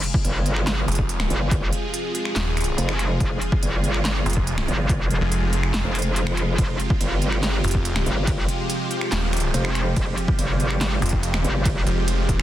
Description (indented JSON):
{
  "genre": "heavy wobble dubstep",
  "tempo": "142 BPM",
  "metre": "4/4",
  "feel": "half-time",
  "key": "F minor",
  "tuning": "A4 = 440 Hz",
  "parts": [
    { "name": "supersaw pad", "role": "sustained chords", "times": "0.0-12.4 s", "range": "C3 to Ab4", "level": "-27 LUFS", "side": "right 1 dB", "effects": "phaser, sidechain pumping" },
    { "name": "big-room dance drum kit", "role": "drums", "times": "0.0-12.4 s", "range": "finger snaps, handclaps, hi-hat, ride cymbal, snare drum", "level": "-28 LUFS", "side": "right 1 dB", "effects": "overdrive" },
    { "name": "electronic kick drum", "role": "drums", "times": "0.1-12.4 s", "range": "none", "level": "-24 LUFS", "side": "equal", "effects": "overdrive" },
    { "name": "metallic wobble bass", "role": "bass", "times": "0.2-11.8 s", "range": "Eb1 to G1", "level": "-23 LUFS", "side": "equal", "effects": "chorus, overdrive" },
    { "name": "snarling distorted saw bass", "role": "bass", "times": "0.9-12.4 s", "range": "Eb1 to F1", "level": "-23 LUFS", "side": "equal", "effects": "distortion, overdrive" }
  ],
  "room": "digital ambience",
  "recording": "dense, heavily limited modern master",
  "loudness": "-20 LUFS",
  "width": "side -13 dB against mid",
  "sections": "0.0-12.4 A section",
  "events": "none",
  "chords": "0.0 Fm",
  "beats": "0.25 0.67 1.09 | 1.51 1.94 2.36 2.78 | 3.20 3.63 4.05 4.47 | 4.89 5.32 5.74 6.16 | 6.58 7.01 7.43 7.85 | 8.27 8.70 9.12 9.54 | 9.96 10.39 10.81 11.23 | 11.65 12.08"
}